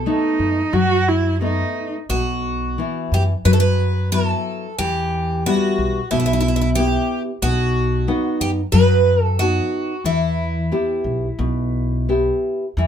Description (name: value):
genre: fado-style ballad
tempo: 90 BPM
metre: 4/4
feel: rubato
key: E minor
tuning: A4 = 440 Hz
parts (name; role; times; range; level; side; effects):
- picked twelve-string acoustic guitar; melody; 0.0-12.1 s; E4 to B4; -22 LUFS; right 1 dB; none
- nylon-string guitar; accompaniment; 0.0-12.9 s; B2 to F#5; -22 LUFS; left 2 dB; none
- upright bass; bass; 0.0-12.9 s; B1 to F#2; -20 LUFS; equal; none
- dark cello; second line; 0.1-1.9 s; D#4 to F#4; -20 LUFS; right 2 dB; none
room: light reverb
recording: none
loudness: -17 LUFS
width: side -8 dB against mid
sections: 0.0-12.8 A section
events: none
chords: 0.0 B7; 2.1 Bsus4; 4.8 Em; 7.4 B; 10.0 Em